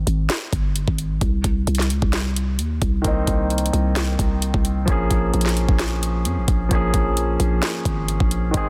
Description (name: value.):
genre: hip hop, trap.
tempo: 131 BPM.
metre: 4/4.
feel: half-time.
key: unclear.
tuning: A4 = 439 Hz.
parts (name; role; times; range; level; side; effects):
clear concert grand piano; accompaniment; 0.0-8.7 s; Eb3 to Ab4; -27 LUFS; equal; low-pass filter.
growling 808-style bass; bass; 0.0-8.7 s; G1 to F2; -24 LUFS; equal; none.
trap drum kit; drums; 0.1-8.7 s; hi-hat, kick drum, snare drum; -25 LUFS; equal; none.
room: digital ambience.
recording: dense, heavily limited modern master.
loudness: -21 LUFS.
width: mono.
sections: 0.0-8.7 A section.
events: break 0.0-3.0.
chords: 0.0 Ab; 1.2 Cm7; 4.9 Bbm7.